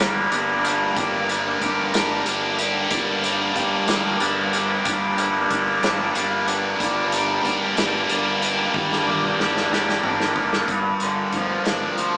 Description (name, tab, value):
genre	psychedelic rock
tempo	62 BPM (dotted quarters)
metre	6/8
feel	straight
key	G minor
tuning	A4 = 440 Hz
part	percussive tonewheel organ	sustained chords	0.0-12.2 s	F4 to Bb5	-29 LUFS	equal	slow rotary speaker
part	overdriven electric guitar	riff	0.0-12.2 s	G2 to G4	-20 LUFS	equal	phaser
part	fuzz fingered electric bass	bass	0.0-12.2 s	G1 to D2	-30 LUFS	equal	overdrive
part	hand-pumped harmonium	drone	0.0-10.8 s	G2 to G3	-31 LUFS	equal	none
part	vintage drum kit	drums	0.0-12.1 s	hi-hat, kick drum, snare drum, toms	-26 LUFS	equal	none
room	moderate stone room reverb, RT60 1.1 s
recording	band playing live in one room, small speaker sound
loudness	-18 LUFS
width	side -34 dB against mid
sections	0.0-10.7 A section; 10.7-12.2 B section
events	drum fill 8.7-10.7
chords	0.0 Gm; 10.7 Gm7